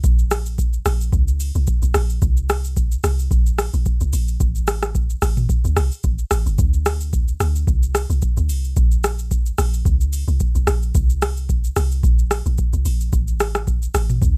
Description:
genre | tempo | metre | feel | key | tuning
amapiano | 110 BPM | 4/4 | swing 55% on 16ths | unclear | A4 = 440 Hz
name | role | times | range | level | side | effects
deep log drum bass | bass | 0.0-14.4 s | G1 to D2 | -22 LUFS | equal | none
booming analog drum machine | drums | 0.0-14.4 s | hi-hat, kick drum, rim click, shaker, toms | -22 LUFS | equal | none
room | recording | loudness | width
little or no reverb | none | -20 LUFS | mono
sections
0.0-14.4 A section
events
none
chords
none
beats
| 0.04 0.58 1.13 1.68 | 2.22 2.77 3.31 3.86 | 4.40 4.95 5.49 6.04 | 6.58 7.13 7.67 8.22 | 8.77 9.31 9.86 10.40 | 10.95 11.49 12.04 12.58 | 13.13 13.68 14.22

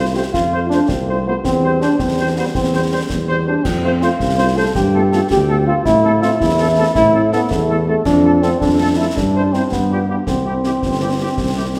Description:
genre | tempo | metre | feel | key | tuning
military-style march for wind band | 109 BPM (dotted quarters) | 6/8 | straight | C major | A4 = 436 Hz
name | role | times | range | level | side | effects
mellow trumpet section | melody | 0.0-11.8 s | G4 to C5 | -28 LUFS | equal | none
clear euphonium | second line | 0.0-11.8 s | A3 to A4 | -19 LUFS | equal | none
mellow French horn section | accompaniment | 0.0-11.8 s | G3 to G4 | -28 LUFS | equal | none
breathy tuba | bass | 0.0-11.8 s | G1 to A2 | -21 LUFS | equal | none
concert snare drum, concert bass drum and clash cymbals | drums | 0.3-11.8 s | none | -27 LUFS | equal | none
room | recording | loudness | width
wet concert hall reverb, RT60 2.3 s | recorded in a church or concert hall | -16 LUFS | mono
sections
0.0-11.8 A section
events
none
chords
0.0 F; 1.4 C/E; 3.7 F; 4.8 G9; 5.9 Am; 8.1 Dm/F; 9.2 C/G; 9.7 G7; 10.3 C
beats
| 0.34 0.90 | 1.45 2.00 | 2.55 3.10 | 3.65 4.20 | 4.75 5.31 | 5.86 6.41 | 6.96 7.51 | 8.06 8.62 | 9.17 9.72 | 10.27 10.82 | 11.37

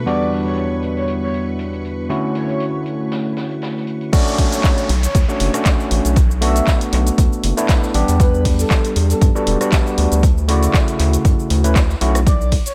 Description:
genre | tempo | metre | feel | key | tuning
deep house | 118 BPM | 4/4 | swing 55% on 16ths | D major | A4 = 441 Hz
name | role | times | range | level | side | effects
warm analog pad | sustained chords | 0.0-4.1 s | D3 to C#5 | -31 LUFS | equal | chorus, sidechain pumping
overdriven tine electric piano | stabs | 0.0-12.2 s | E2 to B4 | -23 LUFS | equal | sidechain pumping
string machine, violins | texture | 0.0-4.1 s | B4 to C#6 | -40 LUFS | equal | ensemble chorus, sidechain pumping
breathy flute-like synth lead | melody | 0.1-12.7 s | A4 to E5 | -29 LUFS | equal | lush chorus, dub echo
open jazz drum kit | drums | 0.1-12.6 s | hi-hat, snare drum | -37 LUFS | equal | none
deep house drum kit | drums | 4.1-12.7 s | cabasa, crash cymbal, handclaps, hi-hat, rim click | -27 LUFS | equal | none
electronic kick drum | drums | 4.1-12.6 s | none | -17 LUFS | equal | none
downlifter | sound effects | 4.1-8.2 s | none | -32 LUFS | equal | none
round analog bass | bass | 4.9-12.6 s | E1 to G2 | -19 LUFS | equal | sidechain pumping
room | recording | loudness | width
digital ambience | none | -17 LUFS | mono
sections
0.0-4.1 A section; 4.1-12.7 B section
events
drop 4.1-12.7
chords
0.1 Em7; 2.1 Dmaj7; 4.1 Bm9; 6.2 Gmaj9/B; 8.2 Em7; 10.2 Dmaj7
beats
| 0.06 0.57 1.08 1.59 | 2.10 2.60 3.11 3.62 | 4.13 4.64 5.15 5.66 | 6.16 6.67 7.18 7.69 | 8.20 8.71 9.21 9.72 | 10.23 10.74 11.25 11.76 | 12.27

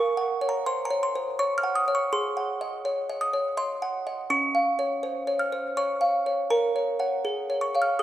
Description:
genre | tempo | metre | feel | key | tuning
classical, lullaby for music box | 82 BPM | 3/4 | straight | Db major | A4 = 441 Hz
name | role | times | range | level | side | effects
music box | solo | 0.0-8.0 s | Db4 to F6 | -24 LUFS | equal | tape echo
room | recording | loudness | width
moderate recital hall reverb, RT60 1.7 s | none | -24 LUFS | side -12 dB against mid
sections
0.0-8.0 A section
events
none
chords
0.0 Gb/Bb; 2.1 Ab7; 4.3 Db; 6.5 Gb/Bb; 7.2 Db/Ab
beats
0.67 1.39 | 2.12 2.85 3.57 | 4.30 5.03 5.76 | 6.50 7.24 7.99

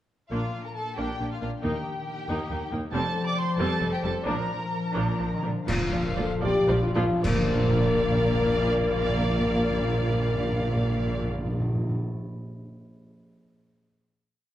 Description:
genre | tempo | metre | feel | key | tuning
cinematic, heroic adventure film score | 72-93 BPM (dotted quarters) | 6/8 | straight | Bb major | A4 = 438 Hz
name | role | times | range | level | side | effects
dark chamber violin section | melody | 0.3-11.3 s | D5 to D6 | -35 LUFS | right 1 dB | none
clear symphonic violin section | second line | 0.3-11.3 s | F4 to F5 | -36 LUFS | left 1 dB | none
warm symphonic viola section | accompaniment | 0.3-11.3 s | F3 to F4 | -33 LUFS | equal | none
concert harp | arpeggios | 0.3-12.2 s | Bb2 to F5 | -33 LUFS | left 4 dB | none
rich symphonic double bass section | bass | 0.3-11.3 s | F1 to Eb2 | -31 LUFS | right 2 dB | none
warm symphonic cello section | bass | 0.3-11.3 s | Eb2 to Eb3 | -33 LUFS | right 2 dB | none
cymbal swell, clash cymbals and concert bass drum | percussion | 4.3-8.3 s | none | -32 LUFS | right 1 dB | none
mellow French horn section | sustained chords | 5.7-11.3 s | F4 to Bb4 | -27 LUFS | left 2 dB | none
timpani | percussion | 5.7-12.0 s | Bb2 | -30 LUFS | equal | none
room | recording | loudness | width
wet recital hall reverb, RT60 1.7 s | worn, warbling old tape, cassette tape, warbly pitch drift | -24 LUFS | side -13 dB against mid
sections
0.3-5.7 theme; 5.7-7.2 outro; 7.2-10.5 final chord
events
slowing down 3.6-7.2; timpani fill 5.7-7.2; band accent 5.7-6.2, 7.2-7.8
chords
0.3 Bb; 1.6 Eb; 2.9 Fsus2; 4.3 Bb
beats
| 0.32 0.98 | 1.64 2.29 | 2.94 3.59 | 4.27 4.96 | 5.68 6.42 | 7.24 8.07 | 8.89 9.72

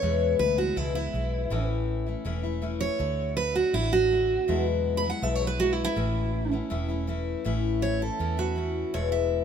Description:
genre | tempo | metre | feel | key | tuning
honky-tonk and classic country | 162 BPM | 4/4 | straight | A major | A4 = 440 Hz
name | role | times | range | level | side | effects
picked steel-string acoustic guitar | melody | 0.0-9.4 s | E4 to B5 | -28 LUFS | right 4 dB | none
picked steel-string acoustic guitar | accompaniment | 0.0-9.4 s | E2 to F#4 | -29 LUFS | left 7 dB | none
vintage muted fingered electric bass | bass | 0.0-9.4 s | E1 to E2 | -30 LUFS | right 1 dB | none
room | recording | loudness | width
light reverb | minimal, uncompressed stereo recording | -24 LUFS | side -8 dB against mid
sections
0.0-7.5 A section; 7.5-9.4 A section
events
steel-string acoustic guitar solo 0.0-7.5, 7.5-9.4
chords
0.0 E; 1.5 A; 3.0 D; 4.5 Eadd9; 6.0 A; 8.9 E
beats
| 0.02 0.39 0.77 1.14 | 1.51 1.88 2.25 2.62 | 2.99 3.36 3.73 4.11 | 4.48 4.85 5.22 5.59 | 5.96 6.34 6.71 7.08 | 7.45 7.82 8.20 8.57 | 8.94 9.31

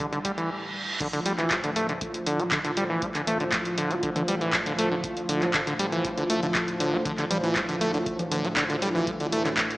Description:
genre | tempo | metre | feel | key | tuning
acid house | 119 BPM | 4/4 | straight | D minor | A4 = 442 Hz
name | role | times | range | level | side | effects
warm analog pad | sustained chords | 0.0-9.8 s | D2 to G3 | -30 LUFS | equal | chorus, sidechain pumping
liquid acid bass | riff | 0.0-9.5 s | D3 to A3 | -27 LUFS | equal | chorus, tape echo
electronic kick drum | drums | 0.0-9.7 s | none | -40 LUFS | equal | none
punchy analog drum machine | drums | 0.0-9.8 s | congas, crash cymbal, handclaps, hi-hat | -28 LUFS | equal | none
reverse cymbal | sound effects | 0.3-1.0 s | none | -34 LUFS | right 2 dB | none
room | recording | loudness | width
wet lush hall reverb, RT60 1.9 s | dreamy mix soaked in reverb, small speaker sound | -24 LUFS | side -19 dB against mid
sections
0.0-1.0 A section; 1.0-9.8 B section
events
reverse cymbal 0.3-1.0; drop 1.0-9.8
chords
0.0 D5; 1.0 Dm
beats
0.00 0.50 | 1.00 1.51 2.01 2.52 | 3.02 3.53 4.03 4.53 | 5.04 5.54 6.05 6.55 | 7.05 7.56 8.06 8.57 | 9.07 9.58

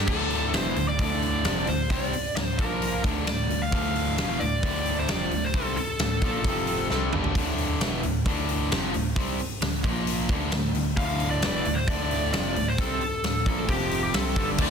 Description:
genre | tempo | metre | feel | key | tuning
hard rock | 132 BPM | 4/4 | straight | D minor | A4 = 440 Hz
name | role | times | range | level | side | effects
cranked stack guitar | riff | 0.0-14.7 s | D2 to C4 | -31 LUFS | right 9 dB | overdrive, spring reverb
overdriven electric guitar | riff | 0.0-14.7 s | D2 to C4 | -32 LUFS | left 11 dB | none
tine electric piano | bass | 0.0-14.7 s | E1 to D2 | -31 LUFS | equal | fast stereo tremolo
biting lead guitar | melody | 0.1-7.1, 11.0-14.7 s | G4 to F5 | -29 LUFS | left 1 dB | overdrive, slapback echo
big rock drum kit | drums | 0.1-14.7 s | crash cymbal, hi-hat, kick drum, snare drum, toms | -28 LUFS | equal | none
overdriven tonewheel organ | sustained chords | 14.6-14.7 s | D4 to E5 | -36 LUFS | right 3 dB | none
distorted electric guitar | riff | 14.6-14.7 s | D2 to D3 | -29 LUFS | equal | distortion
room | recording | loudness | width
light reverb, small room ambience | dense, heavily limited modern master | -23 LUFS | side -6 dB against mid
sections
0.1-14.6 A section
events
drum fill 6.9-7.4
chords
0.1 Dm; 2.6 Bb5; 3.0 Dm; 6.5 F5; 6.9 Dm; 9.8 Bb5; 10.3 Dm; 13.7 F5; 14.1 D5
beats
| 0.09 0.54 0.99 1.45 | 1.91 2.36 2.82 3.27 | 3.73 4.18 4.63 5.09 | 5.54 6.00 6.45 6.90 | 7.36 7.81 8.26 8.72 | 9.17 9.62 10.08 10.53 | 10.98 11.43 11.88 12.34 | 12.79 13.24 13.69 14.14 | 14.59

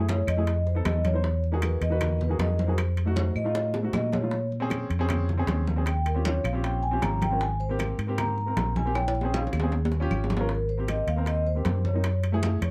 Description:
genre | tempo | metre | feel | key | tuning
Afro-Cuban jazz | 156 BPM | 4/4 | straight | Ab major | A4 = 440 Hz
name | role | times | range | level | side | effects
warm baby grand piano | accompaniment | 0.0-12.7 s | A3 to Db5 | -34 LUFS | equal | none
fingered electric bass | bass | 0.0-12.7 s | Ab1 to Bb2 | -29 LUFS | equal | none
vibraphone with soft mallets | melody | 0.1-12.2 s | Bb4 to Bb5 | -33 LUFS | equal | none
bongos | percussion | 0.1-12.7 s | none | -41 LUFS | equal | none
congas | percussion | 0.1-12.7 s | none | -36 LUFS | equal | none
timbales | percussion | 0.1-12.7 s | none | -38 LUFS | equal | none
claves | percussion | 0.3-10.3 s | none | -44 LUFS | equal | none
room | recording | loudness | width
light reverb | dark, warm production | -26 LUFS | mono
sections
0.0-10.5 A section; 10.5-12.7 B section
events
vibraphone solo 0.0-10.5; drum fill 3.2-4.3, 9.0-10.5; grand piano fill 12.4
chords
0.5 F7#11; 1.2 Emaj9#11; 2.8 F7b9; 4.3 Bbm9; 5.9 Eb13; 7.4 Abmaj9; 9.0 Bbm7; 9.7 Eb7; 10.5 Abmaj9; 12.0 Gbm7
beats
0.09 0.47 0.86 | 1.24 1.63 2.01 2.40 | 2.78 3.17 3.55 3.94 | 4.32 4.71 5.09 5.48 | 5.87 6.25 6.64 7.02 | 7.41 7.79 8.18 8.56 | 8.95 9.34 9.72 10.11 | 10.49 10.88 11.27 11.65 | 12.04 12.43

